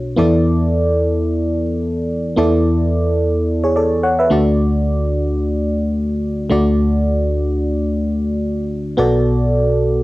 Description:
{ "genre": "pop", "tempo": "free time", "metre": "none", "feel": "none", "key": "unclear", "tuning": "A4 = 439 Hz", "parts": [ { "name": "FM electric piano", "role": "solo", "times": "0.0-10.0 s", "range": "B1 to F#5", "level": "-14 LUFS", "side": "equal", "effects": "chorus" } ], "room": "wet small room reverb, RT60 0.6 s", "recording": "home recording on cassette", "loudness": "-15 LUFS", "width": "side -18 dB against mid", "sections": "0.0-9.0 A section; 9.0-10.0 B section", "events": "none", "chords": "0.2 E7sus4; 4.3 D; 9.0 Bm7", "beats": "free time" }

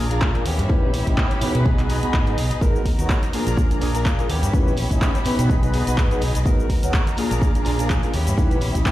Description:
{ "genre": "filtered disco house", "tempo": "125 BPM", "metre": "4/4", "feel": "swing 56% on 16ths", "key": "unclear", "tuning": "A4 = 440 Hz", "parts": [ { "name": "mellow synth brass", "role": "accompaniment", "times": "0.0-8.9 s", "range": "A#3 to D#5", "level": "-26 LUFS", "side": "equal", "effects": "chorus, phaser, sidechain pumping, low-pass filter" }, { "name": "dark studio violin section", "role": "sustained chords", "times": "0.0-8.9 s", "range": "B3 to B5", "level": "-31 LUFS", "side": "left 1 dB", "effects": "sidechain pumping, low-pass filter" }, { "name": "direct-recorded clean electric guitar", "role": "riff", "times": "0.0-8.9 s", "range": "E3 to A#4", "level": "-30 LUFS", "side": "left 1 dB", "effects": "vintage 12-bit sampler grit, sidechain pumping, low-pass filter" }, { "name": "overdriven fingered electric bass", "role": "bass", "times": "0.0-8.8 s", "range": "G#1 to B2", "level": "-23 LUFS", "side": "equal", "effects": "sidechain pumping, low-pass filter" }, { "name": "punchy analog drum machine", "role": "drums", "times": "0.1-8.9 s", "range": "handclaps, hi-hat, shaker", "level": "-30 LUFS", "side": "equal", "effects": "overdrive, sidechain pumping on hats, studio ambience, sidechain pumping on perc" }, { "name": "tambourine", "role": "percussion", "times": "0.1-8.9 s", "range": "none", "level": "-42 LUFS", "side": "right 3 dB", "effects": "none" }, { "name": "electronic kick drum", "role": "drums", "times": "0.2-8.9 s", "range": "none", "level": "-20 LUFS", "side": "equal", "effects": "studio ambience" } ], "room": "light reverb", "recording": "played on a big sound system in a bare room, large studio reverb", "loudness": "-18 LUFS", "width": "side -15 dB against mid", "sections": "0.0-8.9 A section", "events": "none", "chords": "0.5 D#7b9b13; 1.7 B6; 2.6 G#m9; 3.3 A#7; 4.3 D#7b9b13; 5.5 B6; 6.5 G#m9; 7.2 A#7; 8.1 D#7b9b13", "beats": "0.22 | 0.70 1.18 1.66 2.14 | 2.62 3.10 3.58 4.06 | 4.54 5.02 5.50 5.98 | 6.46 6.94 7.42 7.90 | 8.38 8.86" }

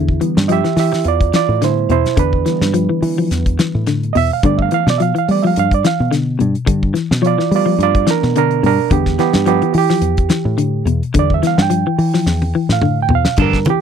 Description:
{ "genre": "afrobeat", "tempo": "107 BPM", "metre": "4/4", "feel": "swing 55% on 16ths", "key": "unclear", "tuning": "A4 = 440 Hz", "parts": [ { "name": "overdriven reed electric piano", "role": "accompaniment", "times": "0.0-13.8 s", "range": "D3 to G5", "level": "-17 LUFS", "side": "right 22 dB", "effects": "none" }, { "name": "clean electric guitar", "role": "arpeggios", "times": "0.0-13.8 s", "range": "B2 to F3", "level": "-18 LUFS", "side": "left 7 dB", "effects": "none" }, { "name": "fingered electric bass", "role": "bass", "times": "0.0-13.6 s", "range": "E2 to G3", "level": "-17 LUFS", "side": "equal", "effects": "none" }, { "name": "damped 70s drum kit", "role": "drums", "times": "0.1-13.8 s", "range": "hi-hat, kick drum, snare drum, toms", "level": "-19 LUFS", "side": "left 1 dB", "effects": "none" }, { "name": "electric guitar at the edge of break-up", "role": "stabs", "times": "13.4-13.7 s", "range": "F3 to A4", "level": "-19 LUFS", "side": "right 12 dB", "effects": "none" }, { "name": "congas", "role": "percussion", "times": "13.4-13.8 s", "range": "none", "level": "-19 LUFS", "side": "right 4 dB", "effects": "none" } ], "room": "little or no reverb", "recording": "dry, close 1970s-style studio recording", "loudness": "-13 LUFS", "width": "side -8 dB against mid", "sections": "0.0-13.8 A section", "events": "reed electric piano solo 0.0-13.8; drum fill 12.3-13.4", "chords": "0.0 Em7; 4.4 G9; 8.9 Em7", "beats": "0.49 1.06 1.62 | 2.19 2.75 3.31 3.87 | 4.44 5.00 5.56 6.12 | 6.68 7.24 7.80 8.36 | 8.92 9.48 10.04 10.60 | 11.16 11.72 12.28 12.84 | 13.40" }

